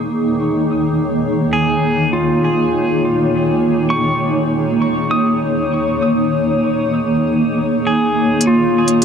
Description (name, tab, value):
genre	ambient dub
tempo	99 BPM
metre	4/4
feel	swing 54% on 16ths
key	unclear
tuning	A4 = 442 Hz
part	granular cloud pad	sustained chords	0.0-9.0 s	Eb3 to Db5	-15 LUFS	equal	built-in reverb, vintage 12-bit sampler grit
part	pedal steel guitar	arpeggios	0.0-9.0 s	F4 to Eb6	-20 LUFS	right 1 dB	dub echo
part	electronic hi-hat	drums	8.4-9.0 s	none	-19 LUFS	right 1 dB	none
room	moderate huge ambient reverb, RT60 4.2 s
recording	dark, warm production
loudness	-14 LUFS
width	side -7 dB against mid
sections	0.0-8.4 A section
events	filter sweep on pedal steel guitar 0.0-8.4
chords	0.0 Bbm/Eb; 8.4 Eb5